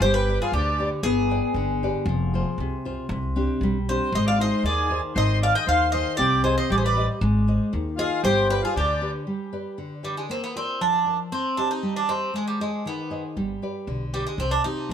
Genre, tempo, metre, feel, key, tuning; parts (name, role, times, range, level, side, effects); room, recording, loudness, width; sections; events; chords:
greek folk, Greek bouzouki band; 117 BPM; 2/4; straight; G phrygian dominant; A4 = 441 Hz
Greek bouzouki; melody; 0.0-14.9 s; G3 to G5; -24 LUFS; right 1 dB; tape echo
accordion; second line; 0.0-0.9, 4.1-9.1 s; D4 to Eb5; -28 LUFS; left 2 dB
nylon-string guitar; accompaniment; 0.0-14.9 s; C3 to G5; -27 LUFS; left 1 dB
upright bass; bass; 0.0-9.1, 13.4-14.9 s; F1 to G2; -26 LUFS; equal
moderate small room reverb, RT60 0.6 s; -21 LUFS; side -8 dB against mid
0.0-1.0 A section; 1.0-9.3 A section; 9.3-14.9 B section
0.0 G; 2.1 Fm; 3.1 Csus2; 4.1 Ab; 6.2 Cm; 7.2 Ab; 8.2 G; 10.3 Bb; 11.3 Cm; 12.3 Ab; 13.4 G; 14.4 Cm